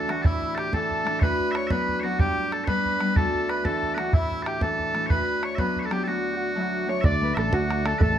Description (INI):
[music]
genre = celtic folk, Celtic jig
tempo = 124 BPM (dotted quarters)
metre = 6/8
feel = straight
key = D major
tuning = A4 = 439 Hz
[part]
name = loud bright bagpipes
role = melody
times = 0.0-8.2 s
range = E4 to E5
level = -27 LUFS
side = equal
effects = plate reverb
[part]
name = mellow accordion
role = second line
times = 0.0-8.2 s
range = E4 to D5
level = -31 LUFS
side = right 1 dB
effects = none
[part]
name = Celtic harp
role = accompaniment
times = 0.0-8.2 s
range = D2 to D4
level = -28 LUFS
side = left 1 dB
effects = none
[part]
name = bodhran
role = percussion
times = 0.1-8.1 s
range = none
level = -24 LUFS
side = right 1 dB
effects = none
[part]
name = open-back banjo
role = second line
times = 6.9-8.2 s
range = F#4 to D5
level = -32 LUFS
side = right 4 dB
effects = none
[part]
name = sustaining fretless electric bass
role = bass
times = 7.0-8.2 s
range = A1 to D2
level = -26 LUFS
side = right 1 dB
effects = none
[sound]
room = moderate small room reverb, RT60 0.5 s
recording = none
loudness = -22 LUFS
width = side -10 dB against mid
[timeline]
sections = 0.0-7.0 A section; 7.0-8.2 B section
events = none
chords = 0.0 Dsus2; 1.2 Bm/D; 2.2 G; 3.2 Dsus2; 5.1 Bm/D; 7.0 D